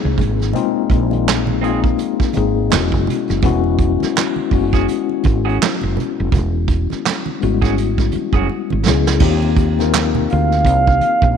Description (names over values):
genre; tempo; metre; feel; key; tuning
R&B, neo-soul; 83 BPM; 4/4; swing 58% on 16ths; unclear; A4 = 441 Hz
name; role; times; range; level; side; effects
mellow tine electric piano; accompaniment; 0.0-11.4 s; G3 to Bb4; -19 LUFS; left 12 dB; medium stereo tremolo
congas; percussion; 0.0-11.2 s; none; -28 LUFS; right 10 dB; none
woody fretless electric bass; bass; 0.1-11.4 s; E1 to Eb2; -18 LUFS; right 1 dB; none
vintage brush drum kit; drums; 0.2-11.4 s; crash cymbal, handclaps, hi-hat, kick drum, snare drum; -18 LUFS; right 4 dB; none
electric guitar through a small old amp; second line; 1.6-8.5 s; C4 to Ab4; -26 LUFS; right 13 dB; none
gliding portamento lead; melody; 10.3-11.4 s; F5; -15 LUFS; right 2 dB; chorus, phaser
room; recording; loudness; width
light reverb, studio reverb; 1960s-style stereo with parts hard left and right; -14 LUFS; side -7 dB against mid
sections
0.0-3.4 A section; 3.4-9.2 B section; 9.2-11.4 C section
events
drum fill 8.5-9.2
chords
0.0 Bb9sus4; 2.7 E69; 9.2 Eb69